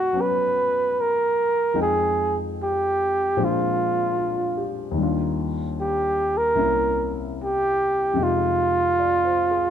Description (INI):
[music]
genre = jazz ballad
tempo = 75 BPM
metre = 4/4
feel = swing 69% on 8ths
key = unclear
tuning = A4 = 441 Hz
[part]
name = breathy flugelhorn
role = melody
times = 0.0-9.7 s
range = F4 to B4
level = -20 LUFS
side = right 1 dB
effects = none
[part]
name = warm concert grand piano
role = accompaniment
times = 0.0-9.7 s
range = C2 to G5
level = -26 LUFS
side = left 3 dB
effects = none
[sound]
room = moderate large studio reverb, RT60 1.2 s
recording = close, detailed microphones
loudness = -20 LUFS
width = side -9 dB against mid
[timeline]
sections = 0.0-9.7 A section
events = none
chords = 0.0 B69; 1.8 Fm7; 3.4 Bb9; 5.0 Ebmaj7; 6.6 C7b9; 8.2 Fm7